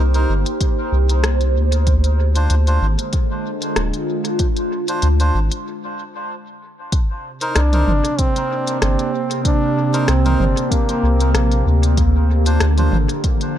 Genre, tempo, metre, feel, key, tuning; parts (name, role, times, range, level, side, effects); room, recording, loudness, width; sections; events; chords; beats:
ambient dub; 95 BPM; 4/4; swing 55% on 16ths; C minor; A4 = 442 Hz
warbly tape-like pad; sustained chords; 0.0-13.6 s; C3 to C5; -22 LUFS; right 1 dB; chorus, built-in reverb, phaser
melodica; stabs; 0.0-13.0 s; D4 to C5; -28 LUFS; equal; dub echo
soft dub sub bass; bass; 0.0-13.1 s; D1 to D2; -15 LUFS; equal
organic electronic drum kit; drums; 0.1-13.5 s; hi-hat, rim click, toms; -24 LUFS; left 1 dB; dub echo
electronic kick drum; drums; 0.6-13.4 s; -18 LUFS; equal
clear trombone; melody; 7.5-11.8 s; Bb3 to Eb4; -22 LUFS; right 1 dB; dub echo
light reverb; -15 LUFS; side -11 dB against mid
0.0-6.9 A section; 6.9-13.6 B section
break 5.7-6.9
0.0 Cm7; 1.9 Dm7b5; 6.9 Cm7; 12.0 Dm7
0.61 1.24 | 1.87 2.50 3.13 3.77 | 4.40 5.03 5.66 6.29 | 6.92 7.56 8.19 8.82 | 9.45 10.08 10.71 11.35 | 11.98 12.61 13.24